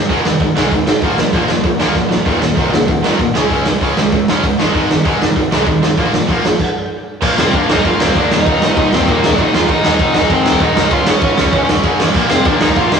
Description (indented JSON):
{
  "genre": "punk rock",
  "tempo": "194 BPM",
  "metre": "4/4",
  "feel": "straight",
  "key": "unclear",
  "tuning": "A4 = 440 Hz",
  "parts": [
    { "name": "tight distorted guitar", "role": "riff", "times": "0.0-13.0 s", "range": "Eb2 to Db4", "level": "-18 LUFS", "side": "left 7 dB", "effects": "distortion" },
    { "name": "tight distorted guitar", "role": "riff", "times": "0.0-13.0 s", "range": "Eb2 to Db4", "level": "-18 LUFS", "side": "right 7 dB", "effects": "distortion" },
    { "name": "growling picked electric bass", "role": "bass", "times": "0.1-13.0 s", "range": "Eb1 to Eb2", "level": "-23 LUFS", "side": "right 1 dB", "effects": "overdrive" },
    { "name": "raw garage drum kit", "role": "drums", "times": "0.1-13.0 s", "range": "crash cymbal, hi-hat, kick drum, ride cymbal, snare drum", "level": "-15 LUFS", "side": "right 1 dB", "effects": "none" },
    { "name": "dark smooth lead guitar", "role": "melody", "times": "7.4-13.0 s", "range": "Bb3 to F5", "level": "-16 LUFS", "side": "right 1 dB", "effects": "overdrive" }
  ],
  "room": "light reverb",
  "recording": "rough rehearsal-room recording, studio ambience",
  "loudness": "-11 LUFS",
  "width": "side -6 dB against mid",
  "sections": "0.0-7.2 A section; 7.2-13.0 B section",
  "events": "drum fill 2.0-2.3; stop 6.6-7.2",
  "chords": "0.0 Ab5; 1.0 Bb5; 2.3 Eb5; 3.4 Db5; 4.6 Ab5; 6.0 Bb5; 7.2 Bb; 8.3 Eb5; 9.7 Ab; 10.9 Db; 12.2 Bb"
}